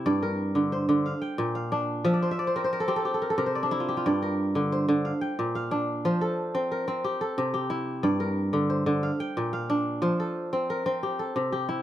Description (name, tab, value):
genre	west african traditional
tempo	120 BPM (dotted quarters)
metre	12/8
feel	straight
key	G dorian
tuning	A4 = 440 Hz
part	kora	solo	0.0-11.8 s	G2 to G5	-25 LUFS	equal	none
room	moderate studio reverb, RT60 0.6 s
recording	none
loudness	-25 LUFS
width	side -12 dB against mid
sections	0.0-11.8 A section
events	kora fill 2.1-4.1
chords	0.1 Gm; 1.1 Bb; 2.1 F5; 3.1 C; 4.1 Gm; 5.1 Bb; 6.1 F; 7.0 C; 8.0 Gm; 9.0 Bb; 10.0 F; 11.0 C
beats	| 0.07 0.57 1.06 1.56 | 2.06 2.56 3.06 3.56 | 4.06 4.55 5.05 5.55 | 6.05 6.55 7.05 7.55 | 8.04 8.54 9.04 9.54 | 10.04 10.53 11.03 11.53